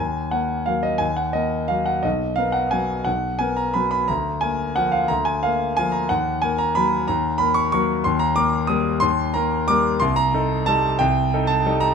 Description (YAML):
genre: classical, piano waltz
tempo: 180 BPM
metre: 3/4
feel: uneven beats, rubato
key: Eb minor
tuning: A4 = 442 Hz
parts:
  - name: warm concert grand piano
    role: solo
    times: 0.0-11.9 s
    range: B1 to Eb6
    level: -18 LUFS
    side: equal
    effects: none
room: moderate large studio reverb, RT60 1.2 s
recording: faint mains hum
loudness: -18 LUFS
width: side -6 dB against mid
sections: 0.0-11.9 A section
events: none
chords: 0.0 Ebm; 2.0 Bmaj7; 4.1 Bb/D; 6.1 Ebm; 8.1 Eb; 10.0 Am7b5/C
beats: 0.33 0.68 | 1.01 1.35 1.70 | 2.04 2.38 2.72 | 3.06 3.40 3.76 | 4.09 4.42 4.76 | 5.10 5.43 5.77 | 6.09 6.42 6.75 | 7.07 7.39 7.73 | 8.06 8.38 8.71 | 9.03 9.35 9.69 | 10.01 10.33 10.67 | 10.99 11.31 11.64